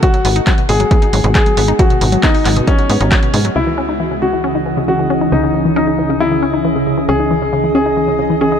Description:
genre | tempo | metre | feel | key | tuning
uplifting trance | 136 BPM | 4/4 | straight | C# minor | A4 = 442 Hz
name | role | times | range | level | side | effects
warm grand piano | second line | 0.0-8.6 s | C#4 to G#4 | -17 LUFS | left 2 dB | digital delay
shimmering ambient pad | sustained chords | 0.0-8.6 s | C#3 to D#5 | -19 LUFS | right 1 dB | chorus, built-in reverb, sidechain pumping
wide unison pluck | arpeggios | 0.0-8.6 s | B2 to D#4 | -19 LUFS | left 2 dB | sidechain pumping, ping-pong delay
electronic kick drum | drums | 0.0-3.2 s | none | -13 LUFS | equal | none
punchy analog drum machine | drums | 0.0-3.5 s | handclaps, hi-hat | -22 LUFS | right 1 dB | low-pass filter on hats, low-pass filter on snare
tight sequencer bass | bass | 0.2-8.6 s | G#1 to G#2 | -19 LUFS | equal | sidechain pumping
room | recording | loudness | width
light reverb | none | -11 LUFS | side -8 dB against mid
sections
0.0-3.6 A section; 3.6-8.6 B section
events
none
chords
0.0 G#m7; 3.6 C#madd9

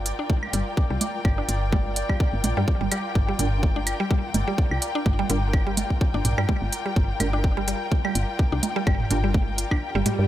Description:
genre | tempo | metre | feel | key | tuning
minimal techno | 126 BPM | 4/4 | swing 55% on 16ths | G minor | A4 = 440 Hz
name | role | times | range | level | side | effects
woody FM bass | bass | 0.0-10.3 s | G1 to G2 | -26 LUFS | equal | sidechain pumping
muted studio string section | texture | 0.0-10.3 s | F4 to G5 | -31 LUFS | left 3 dB | sidechain pumping
pulsing gated texture | texture | 0.0-10.3 s | D5 | -37 LUFS | right 2 dB | chorus, built-in reverb, sidechain pumping
electronic hi-hat | drums | 0.1-10.2 s | none | -27 LUFS | right 2 dB | none
mallet-like synth pluck | riff | 0.2-10.1 s | G3 to D4 | -30 LUFS | right 1 dB | chorus, phaser, sidechain pumping, digital delay
electronic kick drum | drums | 0.3-9.8 s | none | -23 LUFS | equal | none
electronic congas, claves and toms | percussion | 0.3-10.2 s | none | -30 LUFS | right 3 dB | digital delay
filtered dub chord stab | stabs | 3.4-9.2 s | G3 to Bb4 | -31 LUFS | right 4 dB | ensemble chorus, digital delay
swell | sound effects | 9.9-10.3 s | none | -30 LUFS | right 3 dB | none
room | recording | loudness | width
little or no reverb | none | -21 LUFS | side -13 dB against mid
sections
0.0-10.3 A section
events
kick drops out 9.8-10.3; swell 9.9-10.3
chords
0.0 Gm7

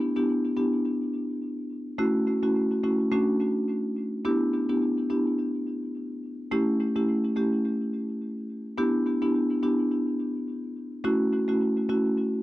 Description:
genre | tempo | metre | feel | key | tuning
dancehall | 106 BPM | 4/4 | swing 56% on 16ths | E dorian | A4 = 442 Hz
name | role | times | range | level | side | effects
marimba with medium mallets | solo | 0.2-12.1 s | A3 to G4 | -24 LUFS | equal | tape echo
room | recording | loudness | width
light reverb | dry, gritty hardware recording, transformer saturation, cassette tape | -24 LUFS | side -17 dB against mid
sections
0.0-4.3 A section; 4.3-12.4 B section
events
none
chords
0.0 Em7; 2.0 F#m7; 3.1 Dmaj7; 4.3 Em7; 6.5 A7; 8.8 Em7; 11.0 F#m7

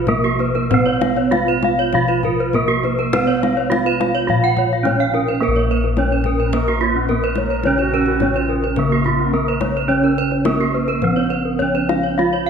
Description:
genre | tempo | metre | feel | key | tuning
Balinese gamelan | 96-108 BPM | 4/4 | straight | Bb pelog | A4 = 440 Hz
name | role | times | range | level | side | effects
gamelan-type bronze metallophone | melody | 0.0-12.5 s | Bb3 to F4 | -21 LUFS | right 4 dB | none
gamelan-type bronze metallophone | accompaniment | 0.0-12.5 s | Db3 to Cb4+35c | -27 LUFS | right 5 dB | none
gamelan-type bronze metallophone | arpeggios | 0.0-12.3 s | Db4 to F5 | -22 LUFS | left 5 dB | none
gamelan-type bossed gongs | bass | 0.0-12.5 s | Bb1 to Cb5+35c | -21 LUFS | left 1 dB | none
kendang | percussion | 0.1-12.4 s | none | -26 LUFS | left 5 dB | none
gamelan-type bronze metallophone | arpeggios | 0.2-12.5 s | F4 to Gb5 | -24 LUFS | right 6 dB | none
bright reedy bansuri | second line | 6.4-10.6 s | F4 to Db5 | -27 LUFS | right 5 dB | none
room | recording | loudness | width
moderate concert hall reverb, RT60 2.2 s | none | -15 LUFS | side -7 dB against mid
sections
0.0-5.4 A section; 5.4-12.5 B section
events
none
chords
none

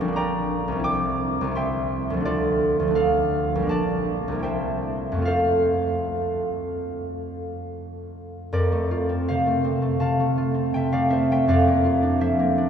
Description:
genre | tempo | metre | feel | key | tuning
classical, solo harp piece | 70-88 BPM | 4/4 | rubato | F major | A4 = 443 Hz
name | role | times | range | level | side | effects
concert harp | solo | 0.0-12.7 s | Bb1 to D6 | -21 LUFS | equal | none
room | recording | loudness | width
wet cathedral reverb, RT60 5.9 s | heard from further back in the room | -21 LUFS | side -8 dB against mid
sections
0.0-8.5 A section; 8.5-12.7 A section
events
none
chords
0.0 Gm/Bb; 0.8 C; 2.3 Dm; 3.7 Gm/Bb; 4.4 C7; 5.3 F; 11.5 Bb/F

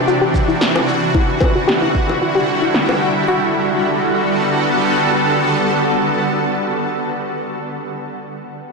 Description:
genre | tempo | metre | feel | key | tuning
sunset chillout | 112 BPM | 4/4 | swing 53% on 16ths | G major | A4 = 440 Hz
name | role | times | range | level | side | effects
shimmering ambient pad | sustained chords | 0.0-7.2 s | C3 to A4 | -16 LUFS | equal | chorus, built-in reverb
soft round pluck | arpeggios | 0.1-3.5 s | E4 to G4 | -20 LUFS | left 4 dB | chorus, digital delay
electronic shaker and snare drum | drums | 0.1-3.3 s | none | -20 LUFS | right 1 dB | overdrive, low-pass filter on perc, low-pass filter on snare, low-pass filter on room
electronic kick drum | drums | 0.3-2.1 s | none | -18 LUFS | right 1 dB | overdrive
bongos | percussion | 0.8-3.0 s | none | -24 LUFS | left 3 dB | none
room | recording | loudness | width
wet lush hall reverb, RT60 2.0 s | blown-out, overdriven recording, overdrive | -14 LUFS | side -3 dB against mid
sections
0.0-3.3 A section; 3.3-7.6 B section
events
filter sweep on drum 0.0-3.3; filter sweep on synth arpeggio sound 0.0-3.3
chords
0.0 Cadd9; 1.1 Em9; 3.3 Gmaj9

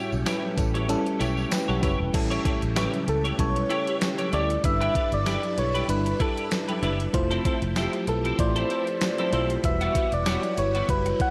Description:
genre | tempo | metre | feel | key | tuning
1980s-style pop | 96 BPM | 4/4 | swing 55% on 16ths | unclear | A4 = 442 Hz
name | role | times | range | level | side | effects
soft struck synth lead | melody | 0.0-11.3 s | C#4 to F#5 | -31 LUFS | equal | chorus, delay
FM electric piano with soft pad layer | accompaniment | 0.0-11.3 s | G2 to A5 | -31 LUFS | equal | chorus, tremolo
phased string machine | sustained chords | 0.0-11.3 s | C#3 to B4 | -40 LUFS | equal | ensemble chorus, phaser
twelve-string electric guitar | riff | 0.0-11.1 s | G3 to C#5 | -34 LUFS | equal | tube saturation, ensemble chorus, delay
fretless electric bass | bass | 0.1-11.1 s | E1 to D2 | -31 LUFS | equal | none
tambourine | percussion | 0.1-2.0 s | none | -46 LUFS | equal | none
clean 12-bit digital drum machine | drums | 0.3-11.3 s | crash cymbal, hi-hat, kick drum, snare drum, tambourine | -30 LUFS | equal | overdrive, gated reverb
room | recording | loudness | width
light reverb, digital ambience | none | -25 LUFS | mono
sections
0.0-2.1 A section; 2.1-11.3 B section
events
FM electric piano fill 0.9-2.1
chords
0.0 A7; 4.6 G6; 7.1 Fmaj7; 9.6 Emadd9

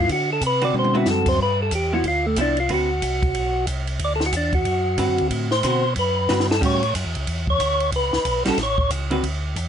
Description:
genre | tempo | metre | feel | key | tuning
soul jazz organ trio | 184 BPM | 4/4 | swing 62% on 8ths | D mixolydian | A4 = 440 Hz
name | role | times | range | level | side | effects
percussive tonewheel organ | melody | 0.0-8.9 s | A3 to D5 | -21 LUFS | equal | slow rotary speaker
vintage hollow-body jazz guitar | accompaniment | 0.0-2.9, 5.0-9.2 s | D3 to B4 | -24 LUFS | right 1 dB | none
mellow tonewheel organ | bass | 0.0-9.7 s | A1 to D3 | -25 LUFS | equal | slow rotary speaker
compact cocktail drum kit | drums | 0.1-9.7 s | crash cymbal, hi-hat, kick drum, ride cymbal, snare drum, toms | -26 LUFS | equal | none
room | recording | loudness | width
light reverb | nothing above 10.8 kHz | -19 LUFS | side -8 dB against mid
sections
0.0-9.7 A section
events
tonewheel organ solo 0.0-9.7; drum fill 0.7-1.1, 6.3-6.6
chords
0.1 D6; 1.4 G6; 2.7 D13; 6.6 A69

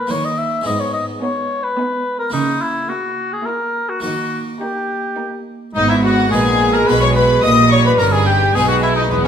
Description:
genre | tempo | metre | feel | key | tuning
classical, baroque-style concerto movement with solo episodes | 107 BPM | 3/4 | straight | G# minor | A4 = 442 Hz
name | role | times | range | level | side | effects
mellow oboe | melody | 0.0-9.3 s | B3 to E5 | -19 LUFS | left 2 dB | none
harpsichord | accompaniment | 0.0-9.3 s | E2 to E4 | -25 LUFS | right 1 dB | none
warm chamber violin section | melody | 0.1-9.3 s | B4 to D#6 | -21 LUFS | left 5 dB | none
warm chamber violin section | second line | 0.1-9.3 s | B3 to D#5 | -20 LUFS | left 2 dB | none
warm chamber viola section | accompaniment | 0.1-9.3 s | G3 to B3 | -22 LUFS | right 2 dB | none
warm chamber cello section | bass | 0.1-9.3 s | E2 to D#3 | -20 LUFS | right 2 dB | none
rich chamber double bass section | bass | 5.8-9.3 s | E1 to B1 | -21 LUFS | right 4 dB | none
room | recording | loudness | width
wet recital hall reverb, RT60 1.5 s | none | -14 LUFS | side -8 dB against mid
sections
0.0-5.8 A section; 5.8-9.3 B section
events
none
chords
0.1 D#; 0.7 G#m; 2.3 A#dim/C#; 4.0 D#; 5.8 G#m; 7.4 D#7/A#; 8.6 G#m/B

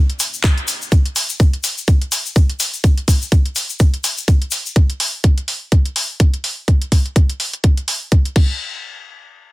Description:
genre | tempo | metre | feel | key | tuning
bass house | 125 BPM | 4/4 | swing 57% on 16ths | A minor | A4 = 440 Hz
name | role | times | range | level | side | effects
dark analog pad | sustained chords | 0.2-0.9 s | A3 to D5 | -54 LUFS | equal | none
garage drum kit | drums | 0.1-8.5 s | crash cymbal, handclaps, hi-hat | -22 LUFS | equal | none
egg shaker | percussion | 0.2-4.7 s | none | -23 LUFS | left 4 dB | none
electronic kick drum | drums | 0.4-8.5 s | none | -12 LUFS | equal | none
room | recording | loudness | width
little or no reverb | dense, heavily limited modern master | -14 LUFS | side -20 dB against mid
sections
0.0-8.6 A section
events
none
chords
0.0 Am; 0.9 N.C.

